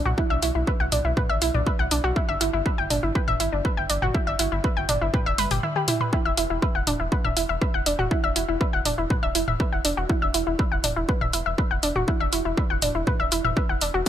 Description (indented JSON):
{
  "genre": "melodic techno",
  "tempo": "121 BPM",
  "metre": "4/4",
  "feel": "straight",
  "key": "E minor",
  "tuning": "A4 = 441 Hz",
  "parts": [
    { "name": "analog pluck", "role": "arpeggios", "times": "0.1-14.1 s", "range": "D4 to G5", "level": "-25 LUFS", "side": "equal", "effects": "chorus, sidechain pumping, tape echo" },
    { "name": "round analog bass", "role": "bass", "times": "0.1-14.0 s", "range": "D1 to B1", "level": "-29 LUFS", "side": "equal", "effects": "sidechain pumping" },
    { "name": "techno drum kit", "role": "drums", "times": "0.1-14.1 s", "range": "hi-hat, toms", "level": "-27 LUFS", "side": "equal", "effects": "overdrive" },
    { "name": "electronic kick drum", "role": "drums", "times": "0.2-14.1 s", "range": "none", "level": "-24 LUFS", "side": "equal", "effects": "overdrive" }
  ],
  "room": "little or no reverb",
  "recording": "none",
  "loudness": "-21 LUFS",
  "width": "side -10 dB against mid",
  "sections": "0.0-14.1 A section",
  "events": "drum fill 5.4-6.1",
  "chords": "0.0 Bm; 2.2 G6; 6.1 Esus2",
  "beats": "| 0.18 0.67 1.17 1.67 | 2.16 2.66 3.15 3.65 | 4.15 4.64 5.14 5.63 | 6.13 6.62 7.12 7.62 | 8.11 8.61 9.10 9.60 | 10.10 10.59 11.09 11.58 | 12.08 12.57 13.07 13.57 | 14.06"
}